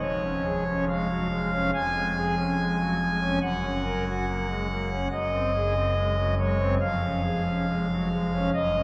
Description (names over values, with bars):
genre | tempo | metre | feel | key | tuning
classical, chorale-style piece for pipe organ | 70 BPM | 4/4 | rubato | Db major | A4 = 439 Hz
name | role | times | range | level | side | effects
pipe organ, foundations | solo | 0.0-8.8 s | F1 to Ab5 | -26 LUFS | equal | none
room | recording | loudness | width
wet cathedral reverb, RT60 4.7 s | heard from further back in the room | -26 LUFS | mono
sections
0.0-8.8 A section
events
none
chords
0.0 Db/F; 3.4 Gb; 5.1 Ab7/Gb; 6.8 Db/F